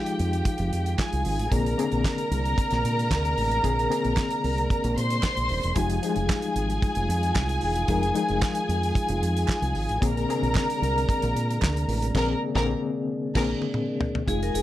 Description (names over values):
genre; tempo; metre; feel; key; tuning
disco; 113 BPM; 4/4; straight; unclear; A4 = 440 Hz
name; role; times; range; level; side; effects
dark studio string section; second line; 0.0-14.6 s; G4 to C6; -28 LUFS; equal; none
reed electric piano; accompaniment; 0.0-14.6 s; C3 to Bb4; -30 LUFS; left 5 dB; overdrive, fast tremolo
tonewheel organ; sustained chords; 0.0-14.6 s; C3 to F4; -34 LUFS; right 2 dB; overdrive, slow rotary speaker
damped 70s drum kit; drums; 0.1-14.6 s; crash cymbal, handclaps, hi-hat, kick drum, snare drum, toms; -28 LUFS; right 1 dB; none
fingered electric bass; bass; 0.2-14.6 s; Eb1 to Bb2; -27 LUFS; equal; none
group handclap; percussion; 1.0-11.7 s; none; -38 LUFS; right 13 dB; none
vibraphone with hard mallets; melody; 14.3-14.6 s; Ab4 to Bb4; -28 LUFS; equal; none
room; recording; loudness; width
light reverb, small room ambience; none; -23 LUFS; side -14 dB against mid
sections
0.0-14.3 A section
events
band accent 12.1-14.3; drum fill 13.2-14.3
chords
0.0 Fm9; 1.5 Bb9; 5.8 Fm9; 10.0 Bb9